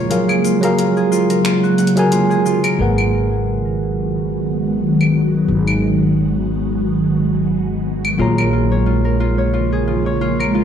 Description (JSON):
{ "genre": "sunset chillout", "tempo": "89 BPM", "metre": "4/4", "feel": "swing 55% on 16ths", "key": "G# dorian", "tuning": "A4 = 440 Hz", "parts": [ { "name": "tine electric piano", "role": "accompaniment", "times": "0.0-10.6 s", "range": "F#3 to A#5", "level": "-20 LUFS", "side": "right 2 dB", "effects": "auto-pan, tape echo" }, { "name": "ethereal airy pad", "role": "sustained chords", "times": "0.0-10.6 s", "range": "C#3 to F#4", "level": "-18 LUFS", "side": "equal", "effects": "ensemble chorus, built-in reverb, phaser" }, { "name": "concert harp", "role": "arpeggios", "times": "0.0-10.6 s", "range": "E#4 to F#5", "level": "-24 LUFS", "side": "left 3 dB", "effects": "tape echo" }, { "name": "deep house drum kit", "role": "drums", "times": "0.1-10.5 s", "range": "cabasa, claves, finger snaps, hi-hat", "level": "-24 LUFS", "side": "left 1 dB", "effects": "overdrive" }, { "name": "upright bass", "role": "bass", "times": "2.8-10.6 s", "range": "G#1 to A#1", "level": "-21 LUFS", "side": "equal", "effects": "none" } ], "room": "wet plate reverb, RT60 1.5 s, digital ambience", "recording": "played on a big sound system in a bare room, large studio reverb", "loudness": "-14 LUFS", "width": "side -8 dB against mid", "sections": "0.0-2.8 A section; 2.8-10.6 B section", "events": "none", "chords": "0.1 F#maj9; 2.8 G#m7; 8.2 A#m7" }